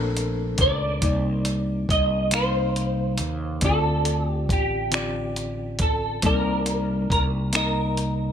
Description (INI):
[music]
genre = slow six-eight R&B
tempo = 46 BPM (dotted quarters)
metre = 6/8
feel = straight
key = C dorian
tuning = A4 = 441 Hz
[part]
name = semi-hollow electric guitar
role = melody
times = 0.0-8.3 s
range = G4 to Eb5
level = -26 LUFS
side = right 1 dB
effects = ensemble chorus
[part]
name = reed electric piano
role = accompaniment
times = 0.0-8.3 s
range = Bb2 to F5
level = -30 LUFS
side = left 3 dB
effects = fast tremolo
[part]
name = warm studio string section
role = sustained chords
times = 0.0-1.0 s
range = Bb2 to C4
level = -45 LUFS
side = right 4 dB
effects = none
[part]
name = fretless electric bass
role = bass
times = 0.0-8.3 s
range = A1 to Eb2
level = -26 LUFS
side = equal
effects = lush chorus
[part]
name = dusty soul sampler-style drum kit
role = drums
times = 0.2-8.2 s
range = finger snaps, hi-hat, kick drum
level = -26 LUFS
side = equal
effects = gated reverb
[sound]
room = light reverb, digital ambience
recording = bright 1980s-style digital production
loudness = -21 LUFS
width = side -8 dB against mid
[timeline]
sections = 0.0-1.0 A section; 1.0-8.3 B section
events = none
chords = 0.0 Bbmaj9; 1.0 Cm9; 3.6 Dm7; 6.2 Cm9